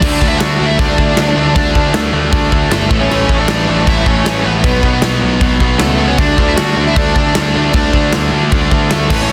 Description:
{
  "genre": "punk rock",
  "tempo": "155 BPM",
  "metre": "4/4",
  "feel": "straight",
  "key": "D major",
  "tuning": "A4 = 440 Hz",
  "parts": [
    { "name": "smooth overdriven lead guitar", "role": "melody", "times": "0.0-9.3 s", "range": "A3 to F#5", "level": "-19 LUFS", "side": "equal", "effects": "none" },
    { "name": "cranked stack guitar", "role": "riff", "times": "0.0-9.3 s", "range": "A2 to D4", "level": "-21 LUFS", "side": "equal", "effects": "overdrive" },
    { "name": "distorted electric guitar", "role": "riff", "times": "0.0-9.3 s", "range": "A2 to D4", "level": "-21 LUFS", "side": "equal", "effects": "overdrive" },
    { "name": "fuzz picked electric bass", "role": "bass", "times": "0.0-9.3 s", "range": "G1 to D2", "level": "-19 LUFS", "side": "equal", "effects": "overdrive" },
    { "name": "big rock drum kit", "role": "drums", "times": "0.0-9.3 s", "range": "crash cymbal, kick drum, snare drum", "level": "-17 LUFS", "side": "equal", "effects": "none" }
  ],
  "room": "little or no reverb",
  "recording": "dense, heavily limited modern master",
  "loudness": "-13 LUFS",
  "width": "mono",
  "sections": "0.0-9.3 A section",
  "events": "none",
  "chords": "0.0 D5; 2.9 A; 4.6 B5; 6.2 D5"
}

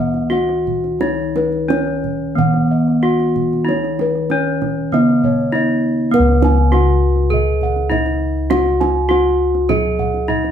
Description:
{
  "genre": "Javanese gamelan",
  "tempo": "86-102 BPM",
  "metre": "4/4",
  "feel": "straight",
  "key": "unclear",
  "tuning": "A4 = 440 Hz",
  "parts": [
    { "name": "gamelan-type bronze metallophone", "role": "melody", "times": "0.0-10.5 s", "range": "Cb4-45c to Ab4+25c", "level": "-18 LUFS", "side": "left 1 dB", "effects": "none" },
    { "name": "gamelan-type bossed gongs", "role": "arpeggios", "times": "0.0-10.5 s", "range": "Cb5-45c to Ab5+25c", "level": "-23 LUFS", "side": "right 1 dB", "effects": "none" },
    { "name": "gamelan-type bossed gongs", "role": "bass", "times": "0.0-10.5 s", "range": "Db2 to Cb5-45c", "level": "-19 LUFS", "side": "left 1 dB", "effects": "none" },
    { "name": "kendang", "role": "percussion", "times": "0.1-10.5 s", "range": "none", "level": "-24 LUFS", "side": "right 4 dB", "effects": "none" },
    { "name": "gamelan-type bronze metallophone", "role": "accompaniment", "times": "1.0-6.1 s", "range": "Eb3+30c to Cb4-45c", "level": "-20 LUFS", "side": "equal", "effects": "none" }
  ],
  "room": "moderate studio reverb, RT60 0.9 s",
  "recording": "band playing live in one room",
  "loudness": "-14 LUFS",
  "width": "side -9 dB against mid",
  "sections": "0.0-6.1 A section; 6.1-10.5 B section",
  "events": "none",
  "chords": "none"
}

